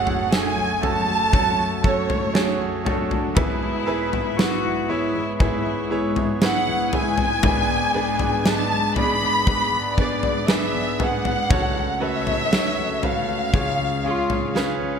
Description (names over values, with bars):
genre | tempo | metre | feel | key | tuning
pop ballad | 59 BPM | 4/4 | straight | F# minor | A4 = 440 Hz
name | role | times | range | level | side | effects
warm symphonic violin section | melody | 0.0-14.6 s | C#5 to B5 | -23 LUFS | equal | tape echo
bright grand piano | accompaniment | 0.0-15.0 s | F#1 to D5 | -26 LUFS | right 4 dB | tape echo
lush unison pad | sustained chords | 0.0-15.0 s | C#2 to D5 | -29 LUFS | left 1 dB | chorus
fingerpicked steel-string acoustic guitar | arpeggios | 0.0-15.0 s | G#2 to E5 | -31 LUFS | left 6 dB | tape echo
impact | sound effects | 0.0-3.4 s | none | -43 LUFS | left 1 dB | none
huge arena drum kit | drums | 0.1-14.8 s | kick drum, snare drum, toms | -24 LUFS | left 1 dB | none
rich chamber cello section | second line | 2.9-6.1, 14.0-15.0 s | C#4 to F#4 | -28 LUFS | left 4 dB | none
room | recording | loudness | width
light reverb | echo-heavy mix | -19 LUFS | side -7 dB against mid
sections
0.0-15.0 A section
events
impact 0.0-3.4; drum fill 14.6-15.0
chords
0.0 F#m; 3.4 E/G#; 7.4 G#dim; 11.5 F#m/C#; 13.5 C#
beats
0.32 1.33 2.35 | 3.37 4.39 5.40 6.42 | 7.44 8.45 9.47 10.49 | 11.51 12.52 13.54 14.56